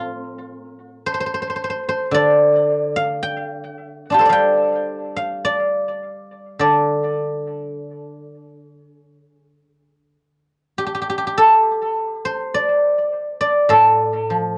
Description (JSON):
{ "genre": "chinese traditional, Chinese solo plucked strings", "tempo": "48-56 BPM", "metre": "4/4", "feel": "rubato", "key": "D yu mode", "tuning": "A4 = 440 Hz", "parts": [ { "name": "guzheng", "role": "solo", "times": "0.0-14.6 s", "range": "A2 to G5", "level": "-19 LUFS", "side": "equal", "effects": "analog delay" } ], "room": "moderate small room ambience, RT60 0.5 s", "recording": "worn, warbling old tape, cassette tape, warbly pitch drift, nothing above 10.3 kHz", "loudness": "-18 LUFS", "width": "mono", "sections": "0.0-11.4 A section; 11.4-14.6 B section", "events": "none", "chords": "none" }